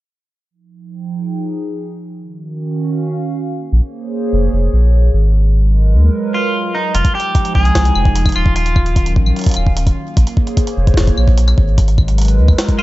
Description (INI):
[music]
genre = IDM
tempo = 149 BPM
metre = 4/4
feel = straight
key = F phrygian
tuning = A4 = 440 Hz
[part]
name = hollow soft pad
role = sustained chords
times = 0.5-12.8 s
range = Eb3 to G5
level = -21 LUFS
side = right 2 dB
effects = chorus
[part]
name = warm sub bass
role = bass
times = 3.7-12.5 s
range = Eb1 to Eb2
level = -12 LUFS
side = equal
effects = none
[part]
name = electric guitar at the edge of break-up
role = melody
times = 6.3-9.1, 12.8 s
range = Eb4 to Ab4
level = -20 LUFS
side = equal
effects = tape echo
[part]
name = jungle sampler-style drum kit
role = drums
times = 6.9-12.8 s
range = claves, hi-hat, snare drum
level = -23 LUFS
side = equal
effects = none
[part]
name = electronic kick drum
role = drums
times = 7.0-12.8 s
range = none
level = -14 LUFS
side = equal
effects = none
[sound]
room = digital ambience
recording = dark, warm production, nothing above 7.8 kHz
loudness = -12 LUFS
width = side -17 dB against mid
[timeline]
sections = 0.5-6.9 A section; 6.9-12.8 B section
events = filter sweep on analog synth pad 0.5-6.9; break 6.1-6.9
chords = 0.5 Fm9; 2.1 Ebm9; 3.5 Bbm9; 5.3 Abm9; 6.9 Fm9; 8.6 Ebm9; 10.0 Bbm9; 11.8 Abm9